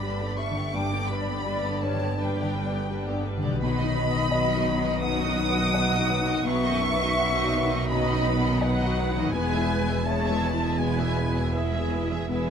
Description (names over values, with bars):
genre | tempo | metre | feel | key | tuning
cinematic, emotional film score for orchestra | 83 BPM | 4/4 | rubato | unclear | A4 = 442 Hz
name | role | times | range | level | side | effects
rich studio violin section | melody | 0.0-12.5 s | E5 to D#6 | -31 LUFS | left 1 dB | none
large flute ensemble | second line | 0.0-12.5 s | G#4 to G5 | -31 LUFS | equal | none
warm studio violin section | second line | 0.0-12.5 s | D#4 to E5 | -36 LUFS | equal | none
felt-muted upright piano | accompaniment | 0.0-12.5 s | B1 to F#5 | -32 LUFS | left 3 dB | none
warm studio viola section | accompaniment | 0.0-12.5 s | D3 to D#4 | -34 LUFS | right 1 dB | none
warm French horn section | sustained chords | 0.0-12.5 s | D#3 to E4 | -34 LUFS | left 3 dB | none
concert harp | arpeggios | 0.0-12.5 s | G2 to B4 | -34 LUFS | left 7 dB | none
rich studio cello section | bass | 0.0-12.5 s | E2 to B2 | -31 LUFS | right 3 dB | none
warm studio double bass section | bass | 0.0-12.5 s | E1 to B1 | -30 LUFS | right 2 dB | none
room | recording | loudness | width
light reverb | close, detailed microphones, lossy compression artefacts | -23 LUFS | side -7 dB against mid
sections
0.0-12.5 A section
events
none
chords
0.0 G; 3.6 B; 9.3 E